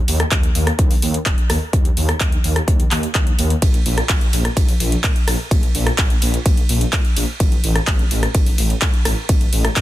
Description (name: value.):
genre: EDM, festival progressive house.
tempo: 127 BPM.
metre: 4/4.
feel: straight.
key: unclear.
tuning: A4 = 440 Hz.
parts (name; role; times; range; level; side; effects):
wide detuned saw bass; bass; 0.1-9.8 s; Eb1 to Bb2; -20 LUFS; equal; chorus, sidechain pumping.
big-room dance drum kit; drums; 0.1-9.8 s; handclaps, hi-hat, ride cymbal, rim click; -22 LUFS; equal; none.
electronic kick drum; drums; 0.3-9.8 s; none; -16 LUFS; equal; none.
room: little or no reverb.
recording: dense, heavily limited modern master.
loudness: -15 LUFS.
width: side -14 dB against mid.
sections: 0.0-9.8 A section.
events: none.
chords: none.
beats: 0.32 0.79 1.26 | 1.73 2.21 2.68 3.15 | 3.62 4.09 4.57 5.04 | 5.51 5.99 6.46 6.93 | 7.40 7.88 8.35 8.82 | 9.29 9.76.